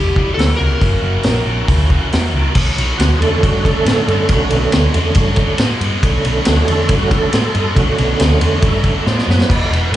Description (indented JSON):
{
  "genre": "blues rock power trio and southern rock",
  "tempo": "138 BPM",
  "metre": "4/4",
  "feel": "straight",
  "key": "B minor",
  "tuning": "A4 = 440 Hz",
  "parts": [
    { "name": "overdriven slide guitar", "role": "melody", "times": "0.0-2.1 s", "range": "G4 to A#4", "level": "-22 LUFS", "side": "left 3 dB", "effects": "none" },
    { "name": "bluesy overdriven lead guitar", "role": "second line", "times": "0.0-2.1 s", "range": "E4 to F#4", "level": "-29 LUFS", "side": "right 4 dB", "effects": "distortion, slapback echo" },
    { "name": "overdriven tonewheel organ", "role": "sustained chords", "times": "0.0-10.0 s", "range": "D3 to A5", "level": "-19 LUFS", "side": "right 3 dB", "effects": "chorus vibrato, fast rotary speaker" },
    { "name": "tight distorted guitar", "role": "riff", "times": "0.0-10.0 s", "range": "E2 to G#3", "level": "-21 LUFS", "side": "equal", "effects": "distortion, slapback echo" },
    { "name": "hollow-body short-scale picked electric bass", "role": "bass", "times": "0.0-10.0 s", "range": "E1 to A2", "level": "-16 LUFS", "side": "equal", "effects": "none" },
    { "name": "vintage drum kit", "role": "drums", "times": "0.2-10.0 s", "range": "crash cymbal, hi-hat, kick drum, ride cymbal, snare drum", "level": "-17 LUFS", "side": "equal", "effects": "none" }
  ],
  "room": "light reverb",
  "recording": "live gig heard through the venue's PA, club reverb, nothing above 10.4 kHz",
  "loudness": "-12 LUFS",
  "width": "side -13 dB against mid",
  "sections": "0.0-2.6 A section; 2.6-10.0 B section",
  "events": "tonewheel organ solo 2.6-10.0; drum fill 9.1-9.5",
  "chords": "0.0 Em9; 0.8 F#7#9; 2.6 Bm9"
}